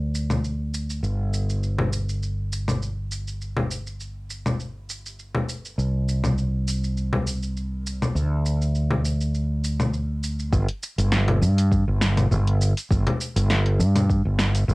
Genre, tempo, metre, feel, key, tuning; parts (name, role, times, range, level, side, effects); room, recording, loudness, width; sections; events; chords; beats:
sunset chillout; 101 BPM; 4/4; swing 54% on 16ths; A4 = 441 Hz
fretless electric bass; bass; 0.0-14.7 s; G1 to G2; -22 LUFS; equal
deep house drum kit; drums; 0.1-14.7 s; congas, hi-hat, shaker, snare drum; -26 LUFS; left 1 dB; overdrive, cassette tape
electronic kick drum; drums; 10.5-14.2 s; -24 LUFS; equal; overdrive, cassette tape
light reverb; home recording on cassette; -21 LUFS; side -24 dB against mid
0.0-10.5 A section; 10.5-14.7 B section
0.43 | 1.03 1.62 2.21 2.81 | 3.40 4.00 4.59 5.18 | 5.78 6.37 6.97 7.56 | 8.15 8.75 9.34 9.94 | 10.53 11.13 11.72 12.31 | 12.91 13.50 14.10 14.69